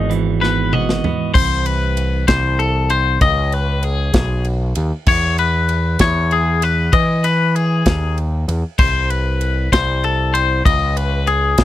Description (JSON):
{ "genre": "math rock and midwest emo", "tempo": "64 BPM (dotted quarters)", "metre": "6/8", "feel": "straight", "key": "E major", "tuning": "A4 = 440 Hz", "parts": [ { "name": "clean electric guitar", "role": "accompaniment", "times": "0.0-3.2 s", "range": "G#2 to F#4", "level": "-22 LUFS", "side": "right 9 dB", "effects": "none" }, { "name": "twangy electric guitar", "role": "arpeggios", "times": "0.0-11.6 s", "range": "G#4 to D#5", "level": "-18 LUFS", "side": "left 5 dB", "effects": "wide subtle chorus" }, { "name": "growling picked electric bass", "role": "bass", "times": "0.0-11.6 s", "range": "G#1 to E3", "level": "-18 LUFS", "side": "equal", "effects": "overdrive" }, { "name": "modern studio drum kit", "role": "drums", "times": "0.1-11.6 s", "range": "crash cymbal, hi-hat, kick drum, ride cymbal, snare drum, toms", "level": "-18 LUFS", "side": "equal", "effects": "none" } ], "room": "little or no reverb", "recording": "dry, close 1970s-style studio recording", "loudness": "-14 LUFS", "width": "side -13 dB against mid", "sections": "0.0-1.4 A section; 1.4-11.6 B section", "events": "drum fill 0.4-1.4", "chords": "0.0 Emaj9/G#; 1.4 C6; 3.2 C#sus2; 5.1 Emaj7; 8.8 Amadd9/C; 10.7 C#sus2", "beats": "0.43 | 1.36 2.29 | 3.22 4.15 | 5.08 6.01 | 6.94 7.87 | 8.79 9.72 | 10.65 11.59" }